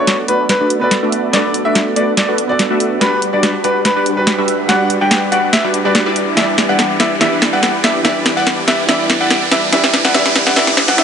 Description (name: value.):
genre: future bass.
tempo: 143 BPM.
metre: 4/4.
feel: half-time.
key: unclear.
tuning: A4 = 442 Hz.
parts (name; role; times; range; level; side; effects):
clear grand piano; melody; 0.0-11.0 s; B4 to G5; -18 LUFS; equal; digital delay.
felt-muted upright piano; accompaniment; 0.0-11.0 s; E3 to D5; -22 LUFS; right 3 dB; digital delay.
airy breathy pad; sustained chords; 0.0-11.0 s; E3 to B4; -26 LUFS; equal; none.
supersaw stab; riff; 0.0-11.0 s; G3 to E5; -18 LUFS; equal; phaser, low-pass filter.
saturated sub bass; bass; 0.0-11.0 s; none; barely audible; none; none.
riser; sound effects; 2.1-11.0 s; none; -22 LUFS; right 1 dB; none.
trap drum kit; drums; 0.1-11.0 s; hi-hat, snare drum; -16 LUFS; equal; none.
room: moderate lush hall reverb, RT60 2.1 s.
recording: high-pass filter, nothing above 10.6 kHz.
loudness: -11 LUFS.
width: side -7 dB against mid.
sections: 0.0-11.0 A section.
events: build-up 0.0-11.0; drum fill 0.0-11.0; filter sweep on supersaw synth 0.0-11.0; filter sweep 0.0-11.0; riser 2.1-11.0.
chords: 0.0 Bm7; 3.0 Gmaj7; 6.2 Em7; 9.7 A7sus4.